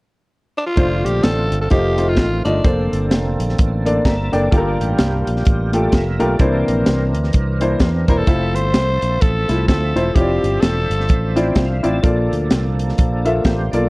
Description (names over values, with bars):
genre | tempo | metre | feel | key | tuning
uptempo gospel | 128 BPM | 4/4 | swing 59% on 8ths | F major | A4 = 442 Hz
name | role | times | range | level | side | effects
growling tenor saxophone | melody | 0.6-3.1, 8.1-11.6 s | D4 to C5 | -21 LUFS | equal | none
clear grand piano | accompaniment | 0.8-13.9 s | G2 to Bb5 | -20 LUFS | left 1 dB | none
overdriven tonewheel organ | sustained chords | 0.8-13.9 s | D3 to A5 | -25 LUFS | right 1 dB | fast rotary speaker, chorus vibrato
fingered electric bass | bass | 0.8-13.9 s | E1 to E2 | -20 LUFS | equal | none
tight funk drum kit | drums | 0.8-13.8 s | hi-hat, kick drum, snare drum | -17 LUFS | equal | none
room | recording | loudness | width
light reverb, small room ambience | worn, warbling old tape, cassette tape, warbly pitch drift | -14 LUFS | side -23 dB against mid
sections
0.8-13.9 A section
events
grand piano fill 3.8-4.5; tonewheel organ fill 11.1-12.0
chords
0.0 N.C.; 0.8 F6; 1.7 F7; 2.6 Bbmaj9/F; 4.5 Gm9; 6.4 C9; 8.3 Fmaj7; 10.2 Dm9; 12.0 Bbmaj7